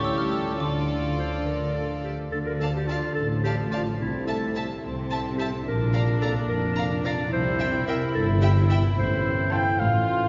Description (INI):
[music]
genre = cinematic, playful, whimsical film cue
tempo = 72 BPM (dotted quarters)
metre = 6/8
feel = straight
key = D minor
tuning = A4 = 439 Hz
[part]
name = warm studio violin section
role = melody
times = 0.0-9.7 s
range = C#5 to C6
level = -39 LUFS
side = equal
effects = none
[part]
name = xylophone with plastic mallets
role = melody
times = 0.0-2.0 s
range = D6 to F6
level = -36 LUFS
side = equal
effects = none
[part]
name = warm studio violin section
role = second line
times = 0.0-9.7 s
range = F4 to A5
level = -37 LUFS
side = equal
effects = none
[part]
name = dark studio viola section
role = accompaniment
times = 0.0-10.3 s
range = F3 to F4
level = -35 LUFS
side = equal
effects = none
[part]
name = mellow French horn section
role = sustained chords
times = 0.0-2.0 s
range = F3 to D4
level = -38 LUFS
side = equal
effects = none
[part]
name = concert harp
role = arpeggios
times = 0.0-10.3 s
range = A2 to A5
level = -35 LUFS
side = equal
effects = none
[part]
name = warm studio cello section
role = bass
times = 0.0-10.3 s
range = F2 to D3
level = -32 LUFS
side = equal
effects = none
[part]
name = warm studio double bass section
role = bass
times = 0.0-10.3 s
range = F1 to D2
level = -32 LUFS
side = equal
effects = none
[part]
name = clear clarinet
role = second line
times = 1.2-10.3 s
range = E4 to G5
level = -31 LUFS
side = equal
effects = none
[part]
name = mellow tuba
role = bass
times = 2.3-10.3 s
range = F1 to D2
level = -34 LUFS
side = equal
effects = none
[sound]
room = wet cathedral reverb, RT60 4.3 s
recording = recorded in a church or concert hall, nothing above 7.5 kHz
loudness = -25 LUFS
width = mono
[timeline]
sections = 0.0-2.3 A section; 2.3-10.3 B section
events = none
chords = 0.0 A7; 0.6 Dm; 4.0 Am/C; 5.7 Bb; 7.3 C; 9.0 F/A